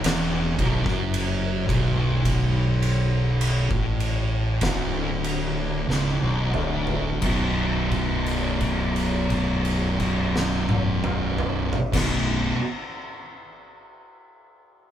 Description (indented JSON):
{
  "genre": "stoner and doom metal",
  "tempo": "43-56 BPM",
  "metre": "4/4",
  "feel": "straight",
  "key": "B minor",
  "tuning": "A4 = 440 Hz",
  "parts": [
    { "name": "thick fuzz guitar", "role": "riff", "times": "0.0-12.6 s", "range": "B1 to B2", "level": "-26 LUFS", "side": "left 3 dB", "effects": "distortion" },
    { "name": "thick fuzz guitar", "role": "riff", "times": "0.0-12.6 s", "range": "B1 to B2", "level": "-26 LUFS", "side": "right 5 dB", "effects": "distortion" },
    { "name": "growling fingered electric bass", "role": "bass", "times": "0.0-12.5 s", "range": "B0 to A1", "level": "-30 LUFS", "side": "equal", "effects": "overdrive" },
    { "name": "oversized low-tuned drum kit", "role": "drums", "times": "0.0-12.3 s", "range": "crash cymbal, kick drum, ride cymbal, snare drum, toms", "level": "-27 LUFS", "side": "equal", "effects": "none" }
  ],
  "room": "light reverb",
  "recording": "band playing live in one room",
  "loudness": "-21 LUFS",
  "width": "side -10 dB against mid",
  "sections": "0.0-7.2 A section; 7.2-12.8 B section",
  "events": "slowing down 0.0-7.2; drum fill 5.9-7.2; held note 7.2-11.9",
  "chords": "0.0 Bm; 7.2 B5",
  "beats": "0.05 1.13 | 2.25 3.40 4.61 5.88 | 7.22 8.60 9.98 11.37"
}